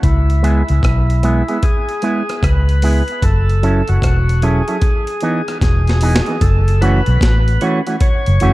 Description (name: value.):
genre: roots reggae.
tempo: 75 BPM.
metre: 4/4.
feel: swing 63% on 16ths.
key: F# dorian.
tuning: A4 = 440 Hz.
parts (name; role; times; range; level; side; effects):
overdriven tonewheel organ; melody; 0.0-8.5 s; E4 to C#5; -22 LUFS; equal; slow rotary speaker, tape echo.
vintage muted fingered electric bass; bass; 0.0-8.5 s; E1 to C#2; -13 LUFS; equal; none.
breakbeat sampler-style drum kit; drums; 0.0-8.5 s; hi-hat, kick drum, rim click, snare drum; -17 LUFS; equal; none.
electric guitar with an envelope filter; accompaniment; 0.4-8.5 s; E3 to A4; -20 LUFS; right 2 dB; tape echo.
room: digital ambience.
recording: echo-heavy mix.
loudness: -12 LUFS.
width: side -18 dB against mid.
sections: 0.0-6.4 A section; 6.4-8.5 B section.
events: drum fill 5.6-6.4.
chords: 0.0 C#m7; 3.2 F#m7; 4.8 Emaj7; 6.4 F#m7.